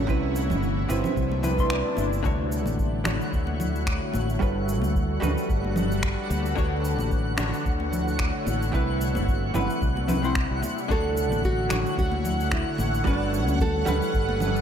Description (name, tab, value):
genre	sunset chillout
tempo	111 BPM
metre	4/4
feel	swing 55% on 16ths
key	D major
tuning	A4 = 441 Hz
part	vintage hollow-body jazz guitar	accompaniment	0.0-14.6 s	C3 to C6	-30 LUFS	moving between left 6 dB and right 6 dB	auto-pan, tape echo
part	shimmering ambient pad	sustained chords	0.0-14.6 s	C3 to F#5	-32 LUFS	equal	chorus, built-in reverb, phaser
part	concert harp	arpeggios	0.0-4.6 s	B3 to F#4	-33 LUFS	right 2 dB	low-pass filter, tape echo, slapback echo
part	fretless electric bass	bass	0.0-14.6 s	G1 to D2	-27 LUFS	equal	tube saturation, wide subtle chorus
part	electronic cabasa, congas and finger snaps	drums	0.1-14.6 s	none	-32 LUFS	right 2 dB	overdrive
part	electronic kick drum	drums	0.1-14.3 s	none	-27 LUFS	equal	none
part	swell	sound effects	1.5-2.2 s	none	-36 LUFS	left 4 dB	none
part	congas	percussion	1.3-14.5 s	none	-35 LUFS	left 3 dB	none
part	twinkling granular texture	texture	2.6-14.6 s	F#5 to F#6	-35 LUFS	right 1 dB	built-in reverb
part	nylon-string guitar	melody	10.9-14.6 s	D4 to A4	-28 LUFS	right 1 dB	tape echo, slapback echo
room	moderate lush hall reverb, RT60 2.1 s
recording	big arena sound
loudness	-22 LUFS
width	side -8 dB against mid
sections	0.0-2.2 A section; 2.2-14.6 A section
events	swell 1.5-2.2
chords	0.1 Cmaj7; 2.2 Dmaj7; 4.4 Gmaj9; 6.6 Dmaj7; 8.7 Cmaj7; 10.9 Dmaj7; 13.1 Gmaj9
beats	| 0.08 0.62 1.17 1.71 | 2.25 2.79 3.33 3.87 | 4.41 4.95 5.49 6.03 | 6.57 7.11 7.65 8.19 | 8.73 9.27 9.81 10.35 | 10.89 11.44 11.98 12.52 | 13.06 13.60 14.14